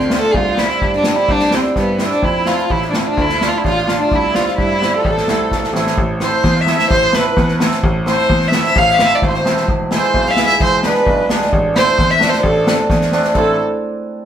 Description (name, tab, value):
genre	klezmer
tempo	129 BPM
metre	2/4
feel	straight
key	A minor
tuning	A4 = 440 Hz
part	rich violin	melody	0.0-13.6 s	B3 to F5	-16 LUFS	left 1 dB	none
part	clear grand piano	bass	0.0-13.6 s	E1 to G2	-21 LUFS	equal	none
part	cimbalom	accompaniment	0.1-13.6 s	G3 to G4	-18 LUFS	right 2 dB	none
part	unplugged drum kit	drums	0.1-13.5 s	crash cymbal, kick drum, snare drum	-19 LUFS	left 1 dB	none
part	musette accordion	second line	2.2-13.6 s	D4 to F5	-23 LUFS	right 2 dB	none
room	wet studio reverb, RT60 0.7 s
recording	band playing live in one room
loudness	-12 LUFS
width	side -9 dB against mid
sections	0.0-6.0 A section; 6.0-13.4 B section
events	speeding up 0.0-14.3; drum fill 5.5-6.0, 12.9-13.4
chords	0.3 C; 2.2 F; 3.2 Dm; 4.1 C; 5.0 Am; 9.7 E; 11.5 Am